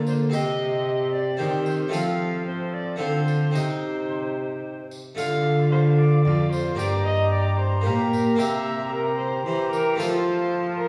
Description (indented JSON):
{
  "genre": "classical, renaissance-style consort dance",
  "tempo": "112 BPM",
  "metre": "3/4",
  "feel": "straight",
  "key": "C dorian",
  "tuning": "A4 = 440 Hz",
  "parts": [
    { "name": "warm viola", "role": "second line", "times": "0.0-10.9 s", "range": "F4 to F5", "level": "-30 LUFS", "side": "equal", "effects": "none" },
    { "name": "bright trombone", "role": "accompaniment", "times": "0.0-10.9 s", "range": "Bb3 to G4", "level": "-32 LUFS", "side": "equal", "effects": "none" },
    { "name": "harpsichord", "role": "accompaniment", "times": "0.0-10.9 s", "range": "F2 to G4", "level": "-33 LUFS", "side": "equal", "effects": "none" },
    { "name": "rich cello", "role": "bass", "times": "0.0-10.9 s", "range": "F2 to F3", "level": "-27 LUFS", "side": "equal", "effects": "none" },
    { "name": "bright alto recorder", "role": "melody", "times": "0.1-10.8 s", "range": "C5 to Bb5", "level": "-35 LUFS", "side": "equal", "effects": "none" },
    { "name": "tambourine", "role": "percussion", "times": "0.1-10.2 s", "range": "none", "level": "-46 LUFS", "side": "equal", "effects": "none" }
  ],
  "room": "wet recital hall reverb, RT60 1.5 s",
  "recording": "heard from further back in the room",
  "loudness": "-23 LUFS",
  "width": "mono",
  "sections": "0.0-5.2 A section; 5.2-10.9 A section",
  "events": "none",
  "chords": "0.3 Cm; 1.9 F; 3.5 Cm; 5.2 Dm; 6.8 Gm; 8.4 C7; 10.0 F"
}